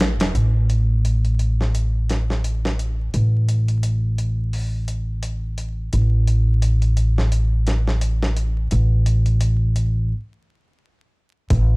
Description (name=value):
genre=trip hop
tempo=86 BPM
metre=4/4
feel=swing 57% on 16ths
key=unclear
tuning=A4 = 440 Hz
part: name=upright bass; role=bass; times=0.0-11.8 s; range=E1 to A1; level=-18 LUFS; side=equal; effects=none
part: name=dusty soul sampler-style drum kit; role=drums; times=0.0-11.7 s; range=hi-hat, kick drum, snare drum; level=-25 LUFS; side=equal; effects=high-pass filter on snare, studio reverb, high-pass filter on hats, high-pass filter on kick
room=digital ambience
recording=vinyl crackle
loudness=-18 LUFS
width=side -29 dB against mid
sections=0.3-11.5 A section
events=stop 10.1-11.5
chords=none